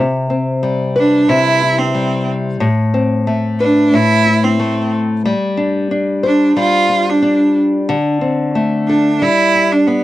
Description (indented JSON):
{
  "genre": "pop",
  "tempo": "91 BPM",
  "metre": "4/4",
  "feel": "straight",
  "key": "C major",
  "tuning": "A4 = 440 Hz",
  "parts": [
    { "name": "nylon-string guitar", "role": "accompaniment", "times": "0.0-10.0 s", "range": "A2 to C5", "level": "-15 LUFS", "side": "left 2 dB", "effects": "none" },
    { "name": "clear cello", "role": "melody", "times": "1.0-10.0 s", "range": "B3 to F4", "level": "-13 LUFS", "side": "right 2 dB", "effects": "none" }
  ],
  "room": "little or no reverb",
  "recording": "dry, close 1970s-style studio recording",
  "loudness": "-12 LUFS",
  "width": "side -15 dB against mid",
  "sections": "0.0-10.0 A section",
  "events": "none",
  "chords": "0.0 Cmaj7; 2.6 Amadd9; 5.3 G7sus4; 7.9 D5; 9.2 G5",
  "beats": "0.63 1.29 1.95 | 2.61 3.27 3.93 4.59 | 5.25 5.91 6.57 7.23 | 7.89 8.55 9.21 9.88"
}